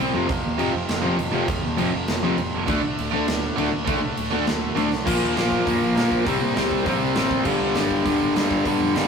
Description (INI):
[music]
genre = punk rock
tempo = 201 BPM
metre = 4/4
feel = straight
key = G minor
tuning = A4 = 444 Hz
[part]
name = distorted electric guitar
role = riff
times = 0.0-9.1 s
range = F2 to D4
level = -23 LUFS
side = left 4 dB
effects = distortion
[part]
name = tight distorted guitar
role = riff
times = 0.0-9.1 s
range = F2 to D4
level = -26 LUFS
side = right 6 dB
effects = distortion
[part]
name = fuzz picked electric bass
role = bass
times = 0.0-9.1 s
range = F1 to Bb2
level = -31 LUFS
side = right 1 dB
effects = overdrive
[part]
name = big rock drum kit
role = drums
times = 0.0-9.0 s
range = crash cymbal, hi-hat, kick drum, snare drum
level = -27 LUFS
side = right 1 dB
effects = none
[part]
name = tight distorted guitar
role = riff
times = 0.3-9.1 s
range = F2 to D4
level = -28 LUFS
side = right 2 dB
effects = distortion
[sound]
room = moderate studio reverb, RT60 0.6 s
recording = rough rehearsal-room recording, tube saturation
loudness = -20 LUFS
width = side -6 dB against mid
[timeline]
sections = 0.0-5.1 A section; 5.1-9.1 B section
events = half time 0.0-5.1; drum fill 4.9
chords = 0.1 F5; 2.7 D5; 5.1 Bb5; 6.3 C5; 7.5 G5